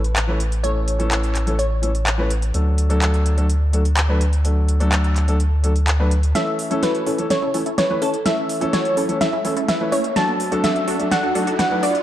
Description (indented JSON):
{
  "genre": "EDM, festival progressive house",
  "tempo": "126 BPM",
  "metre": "4/4",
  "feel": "straight",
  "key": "A major",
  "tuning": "A4 = 439 Hz",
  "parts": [
    { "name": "glassy wavetable pluck", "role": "melody", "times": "0.0-2.3, 6.3-12.0 s", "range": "A4 to A5", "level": "-23 LUFS", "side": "equal", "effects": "chorus, dub echo" },
    { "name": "saturated sub bass", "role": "bass", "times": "0.0-6.3 s", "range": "A1 to D2", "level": "-18 LUFS", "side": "equal", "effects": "none" },
    { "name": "big-room dance drum kit", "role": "drums", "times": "0.0-12.0 s", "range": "handclaps, hi-hat, snare drum", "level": "-24 LUFS", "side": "equal", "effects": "none" },
    { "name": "impact and riser", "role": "sound effects", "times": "0.0-0.6, 7.5-12.0 s", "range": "none", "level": "-32 LUFS", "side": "right 2 dB", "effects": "none" },
    { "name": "warm grand piano", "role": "accompaniment", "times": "0.3-11.8 s", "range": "E3 to B4", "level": "-25 LUFS", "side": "left 1 dB", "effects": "none" },
    { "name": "supersaw stab", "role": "riff", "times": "6.4-12.0 s", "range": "C#4 to D5", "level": "-24 LUFS", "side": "right 1 dB", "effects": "low-pass filter" }
  ],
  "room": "light reverb, digital ambience",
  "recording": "dark, warm production",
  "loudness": "-17 LUFS",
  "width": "side -12 dB against mid",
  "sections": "0.0-6.4 A section; 6.4-12.0 B section",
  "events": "impact 0.0-0.6; build-up 6.4-12.0; drum fill 6.4-12.0; filter sweep on supersaw synth 6.4-12.0; riser 7.5-12.0",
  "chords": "0.0 A; 2.5 D; 6.4 A; 10.2 D"
}